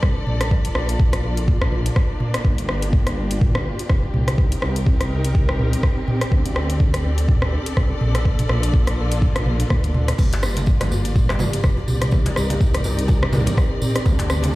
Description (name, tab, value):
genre	afro house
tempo	124 BPM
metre	4/4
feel	swing 57% on 16ths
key	G minor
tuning	A4 = 445 Hz
part	dark symphonic string section	sustained chords	0.0-14.6 s	G3 to D5	-27 LUFS	left 1 dB	sidechain pumping
part	dark detuned saw bass	bass	0.0-14.6 s	F1 to D2	-22 LUFS	equal	sidechain pumping
part	afro-pop drum kit	drums	0.0-14.5 s	crash cymbal, hi-hat, rim click, toms	-25 LUFS	equal	none
part	electronic kick drum	drums	0.0-14.2 s	none	-18 LUFS	equal	none
part	congas	percussion	10.2-14.5 s	none	-27 LUFS	right 2 dB	none
part	tambourine	percussion	10.2-14.5 s	none	-37 LUFS	right 2 dB	none
part	djembe	percussion	10.3-14.3 s	none	-30 LUFS	left 1 dB	none
room	studio reverb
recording	played on a big sound system in a bare room, stone room reverb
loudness	-17 LUFS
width	side -19 dB against mid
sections	0.0-14.6 A section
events	none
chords	0.0 D7sus4; 0.5 Bbmaj7; 2.4 Gm7; 4.4 Cm9; 6.3 D7sus4; 8.3 Bbmaj7; 10.2 Gm7; 12.1 Cm9